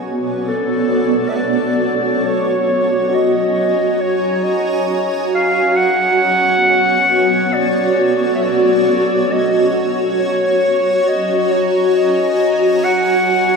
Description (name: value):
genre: ambient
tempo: 68 BPM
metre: 4/4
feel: straight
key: unclear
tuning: A4 = 440 Hz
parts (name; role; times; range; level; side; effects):
- dark clarinet; melody; 0.0-13.6 s; Gb4 to Gb5; -17 LUFS; equal; tape echo
- granular cloud pad; sustained chords; 0.0-13.6 s; Cb4 to Bb5; -15 LUFS; equal; built-in reverb
room: wet lush hall reverb, RT60 2.8 s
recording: none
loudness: -13 LUFS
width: side -4 dB against mid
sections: 0.0-13.6 A section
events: none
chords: 0.0 Cbm7; 2.2 Gb6; 5.8 Cbm7; 9.3 Gb6; 12.8 Cb5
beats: 0.48 1.36 | 2.25 3.13 4.01 4.89 | 5.78 6.66 7.54 8.42 | 9.30 10.19 11.07 11.95 | 12.83